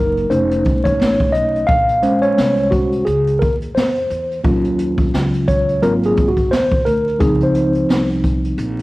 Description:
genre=hip hop, jazz-hop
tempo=87 BPM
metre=4/4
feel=swing 59% on 16ths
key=Bb minor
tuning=A4 = 441 Hz
part: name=mellow tine electric piano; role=accompaniment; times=0.0-8.8 s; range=F3 to F5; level=-16 LUFS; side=equal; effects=medium stereo tremolo, cassette tape
part: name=upright bass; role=bass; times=0.0-8.8 s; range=F1 to F2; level=-22 LUFS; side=equal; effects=none
part: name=jazz brush drum kit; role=drums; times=0.2-8.8 s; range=hi-hat, kick drum, snare drum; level=-19 LUFS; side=equal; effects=cassette tape
room=light reverb, small room ambience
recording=home recording on cassette, vinyl crackle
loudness=-14 LUFS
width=side -20 dB against mid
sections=0.0-8.8 A section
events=tine electric piano solo 0.0-8.8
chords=0.3 F7b13; 1.7 Bbm9; 4.4 Ebm9; 5.8 Ab13; 7.2 Dbmaj7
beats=0.31 0.99 | 1.69 2.38 3.06 3.75 | 4.44 5.13 5.82 6.51 | 7.20 7.89 8.58

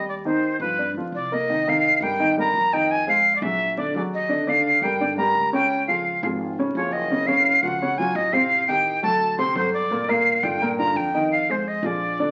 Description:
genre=jazz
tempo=171 BPM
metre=4/4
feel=straight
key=unclear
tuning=A4 = 441 Hz
part: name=breathy bright jazz flute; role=melody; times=0.0-12.3 s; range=Cb5 to C6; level=-23 LUFS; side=equal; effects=none
part: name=dark upright piano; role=accompaniment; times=0.0-12.3 s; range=Bb2 to Eb5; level=-27 LUFS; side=equal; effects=none
part: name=upright bass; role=bass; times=0.0-12.3 s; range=Gb1 to G2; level=-37 LUFS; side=equal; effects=none
room=moderate large studio reverb, RT60 0.9 s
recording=very old 78 rpm record, vinyl crackle, nothing above 7.6 kHz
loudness=-22 LUFS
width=mono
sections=0.0-1.5 A section; 1.5-12.3 B section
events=none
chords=0.0 Eb69; 0.8 G7(no3); 1.5 Cm7; 2.9 Fm7; 3.6 Bbaug7; 4.3 Ebmaj9; 5.7 Db; 7.1 Gb5; 8.5 Am7b5; 9.2 D7; 9.9 Gm7; 11.3 Fm7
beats=| 0.09 0.44 0.79 1.14 | 1.49 1.84 2.19 2.54 | 2.90 3.25 3.60 3.95 | 4.30 4.65 5.00 5.35 | 5.70 6.05 6.40 6.75 | 7.11 7.46 7.81 8.16 | 8.51 8.86 9.21 9.56 | 9.91 10.26 10.61 10.96 | 11.31 11.66 12.01

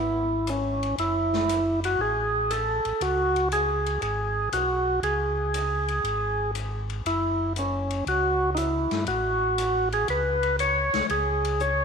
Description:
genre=soul jazz organ trio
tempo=119 BPM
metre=4/4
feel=swing 68% on 8ths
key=C# minor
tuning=A4 = 440 Hz
part: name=percussive tonewheel organ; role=melody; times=0.0-11.8 s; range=C#4 to C#5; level=-24 LUFS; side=right 1 dB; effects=slow rotary speaker
part: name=mellow tonewheel organ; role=bass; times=0.0-11.8 s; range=F#1 to G2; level=-30 LUFS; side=equal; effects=chorus vibrato, slow rotary speaker
part: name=swinging big-band drum kit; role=drums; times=0.5-11.8 s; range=hi-hat, ride cymbal, snare drum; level=-36 LUFS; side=left 10 dB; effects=none
room=wet echo chamber reverb, RT60 2.0 s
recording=1960s-style stereo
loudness=-23 LUFS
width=side -6 dB against mid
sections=0.0-11.8 A section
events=none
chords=0.0 C#m; 1.0 F#m9; 3.0 C#5; 7.1 F#m7; 11.1 C#5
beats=0.47 | 0.98 1.49 1.99 2.50 | 3.01 3.51 4.02 4.53 | 5.03 5.54 6.04 6.55 | 7.05 7.56 8.07 8.57 | 9.08 9.58 10.09 10.59 | 11.10 11.60

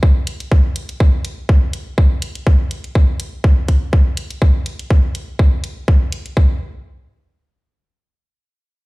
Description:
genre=minimal techno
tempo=123 BPM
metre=4/4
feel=swing 54% on 16ths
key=none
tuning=none
part: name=electronic kick drum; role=drums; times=0.0-6.5 s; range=none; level=-12 LUFS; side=equal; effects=none
part: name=electronic hi-hat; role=drums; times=0.3-6.3 s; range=none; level=-29 LUFS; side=equal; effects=none
room=little or no reverb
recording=played on a big sound system in a bare room, stone room reverb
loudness=-14 LUFS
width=side -23 dB against mid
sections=0.0-6.4 A section; 6.4-8.8 B section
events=none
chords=none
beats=0.03 | 0.52 1.00 1.49 1.98 | 2.47 2.95 3.44 3.93 | 4.42 4.91 5.39 5.88 | 6.37

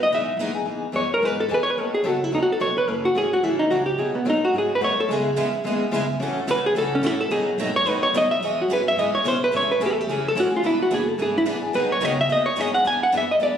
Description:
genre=acoustic string swing (jazz manouche)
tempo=217 BPM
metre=4/4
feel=swing 56% on 8ths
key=E major, A major from 9.5 s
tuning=A4 = 439 Hz
part: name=hollow-body jazz guitar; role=melody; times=0.0-13.6 s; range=B3 to G#5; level=-20 LUFS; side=equal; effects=none
part: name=picked steel-string acoustic guitar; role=accompaniment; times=0.1-13.6 s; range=B2 to A4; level=-28 LUFS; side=left 5 dB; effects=none
part: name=picked steel-string acoustic guitar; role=accompaniment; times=0.1-0.5, 5.1-13.6 s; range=B2 to C#5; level=-29 LUFS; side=right 5 dB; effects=none
part: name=upright bass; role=bass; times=0.1-13.6 s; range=E1 to B2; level=-32 LUFS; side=equal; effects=none
room=moderate club reverb, RT60 0.6 s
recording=recorded on a phone in the room, studio reverb, compression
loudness=-19 LUFS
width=side -8 dB against mid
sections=0.7-9.5 A section; 9.5-13.6 A section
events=hollow-body jazz guitar solo 0.7-13.6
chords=0.0 Emaj7; 1.8 B7; 2.9 F#m7; 4.0 B7; 5.1 C#m7; 6.2 A6; 7.3 B7; 8.4 E69; 9.5 Amaj7; 10.6 E7; 11.7 B6; 12.9 E7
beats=0.12 0.39 | 0.67 0.95 1.22 1.50 | 1.78 2.05 2.33 2.61 | 2.88 3.16 3.44 3.71 | 3.99 4.27 4.54 4.82 | 5.10 5.38 5.65 5.93 | 6.21 6.48 6.76 7.04 | 7.31 7.59 7.87 8.14 | 8.42 8.70 8.97 9.25 | 9.53 9.80 10.08 10.36 | 10.63 10.91 11.19 11.47 | 11.74 12.02 12.30 12.57 | 12.85 13.13 13.40

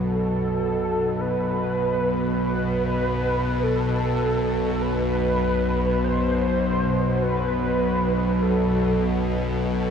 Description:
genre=dark ambient drone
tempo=50 BPM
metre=4/4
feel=straight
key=unclear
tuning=A4 = 440 Hz
part: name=mellow horn-like synth lead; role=melody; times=0.0-9.9 s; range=A4 to C5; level=-25 LUFS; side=right 1 dB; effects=ensemble chorus, shimmer reverb, tape echo
part: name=dark analog pad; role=sustained chords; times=0.0-9.9 s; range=F#3 to B5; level=-27 LUFS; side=equal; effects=lush chorus
part: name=bowed-like drone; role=drone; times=0.0-9.9 s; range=B1 to B2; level=-24 LUFS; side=equal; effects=built-in reverb
room=wet cathedral reverb, RT60 6.1 s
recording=dark, warm production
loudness=-20 LUFS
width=side -7 dB against mid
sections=0.0-9.9 A section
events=none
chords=0.0 B5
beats=| 0.02 1.22 2.42 3.62 | 4.82 6.02 7.22 8.42 | 9.62

